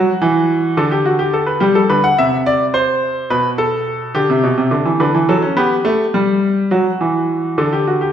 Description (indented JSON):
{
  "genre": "classical, baroque-style two-part invention for grand piano",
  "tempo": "70 BPM (dotted quarters)",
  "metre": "6/8",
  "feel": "straight",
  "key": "G major",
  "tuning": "A4 = 440 Hz",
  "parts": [
    { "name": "bright baby grand piano", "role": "solo", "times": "0.0-8.1 s", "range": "B2 to F#5", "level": "-13 LUFS", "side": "equal", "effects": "none" }
  ],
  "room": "wet recital hall reverb, RT60 1.5 s",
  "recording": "recorded in a church or concert hall",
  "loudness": "-13 LUFS",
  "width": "side -9 dB against mid",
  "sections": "0.0-8.1 A section",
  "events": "none",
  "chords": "0.0 Esus2; 0.8 D; 1.6 G; 2.5 Csus2; 3.3 Asus2/B; 4.2 G; 5.0 D; 5.9 Gsus2; 6.7 Esus2; 7.6 D",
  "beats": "0.78 | 1.61 2.46 | 3.31 4.16 | 5.01 5.86 | 6.72 7.58"
}